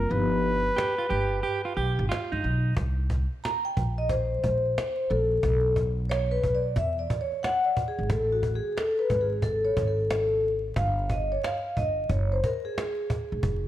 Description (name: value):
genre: hip hop, jazz-hop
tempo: 90 BPM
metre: 4/4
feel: swing 65% on 16ths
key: unclear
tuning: A4 = 440 Hz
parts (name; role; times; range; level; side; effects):
- trumpet with bucket mute; melody; 0.0-2.1 s; Bb4 to B4; -28 LUFS; right 1 dB; none
- vibraphone with soft mallets; accompaniment; 0.0-13.7 s; F3 to Bb5; -26 LUFS; left 1 dB; none
- upright bass; bass; 0.0-13.7 s; E1 to E2; -28 LUFS; equal; none
- cajon; drums; 0.1-13.6 s; none; -31 LUFS; equal; none
- clean electric guitar; second line; 0.8-2.7 s; D#4 to G4; -30 LUFS; right 5 dB; spring reverb
room: moderate echo chamber reverb, RT60 1.5 s, small room ambience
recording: dark, warm production, vinyl crackle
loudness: -24 LUFS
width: side -13 dB against mid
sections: 0.0-2.8 A section; 2.8-13.7 B section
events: kick muted 0.1-2.8; vibraphone solo 2.8-13.7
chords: 0.1 Gaug7; 2.8 Bbsus2; 5.4 Bm9; 6.8 E; 8.1 Amaj7(no3); 10.8 Ebadd9/G; 12.1 F#sus2